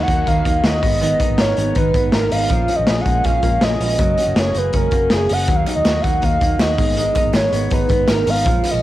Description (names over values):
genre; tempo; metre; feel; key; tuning
jangly indie pop; 161 BPM; 4/4; straight; unclear; A4 = 439 Hz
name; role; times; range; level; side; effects
warbly nostalgic lead; melody; 0.0-8.8 s; G#4 to F#5; -19 LUFS; right 1 dB; chorus, cassette tape
picked steel-string acoustic guitar; accompaniment; 0.0-8.8 s; G#2 to A#4; -25 LUFS; right 7 dB; cassette tape
direct-recorded clean electric guitar; arpeggios; 0.0-8.8 s; E#3 to A#4; -26 LUFS; left 8 dB; cassette tape
vintage muted fingered electric bass; bass; 0.0-8.8 s; F#1 to D#2; -22 LUFS; equal; none
raw garage drum kit; drums; 0.1-8.7 s; hi-hat, kick drum, snare drum; -19 LUFS; equal; cassette tape
group handclap; percussion; 5.7-8.7 s; none; -39 LUFS; right 8 dB; none
room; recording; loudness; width
light reverb, small room ambience; home recording on cassette; -14 LUFS; side -14 dB against mid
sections
0.0-8.8 A section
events
none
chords
0.0 D#m; 0.8 G#madd9; 2.5 A#m7; 4.0 F#add9; 5.5 D#m; 6.8 G#madd9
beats
0.27 0.64 | 1.01 1.39 1.76 2.13 | 2.50 2.88 3.25 3.62 | 3.99 4.37 4.74 5.11 | 5.49 5.86 6.23 6.60 | 6.97 7.35 7.72 8.09 | 8.47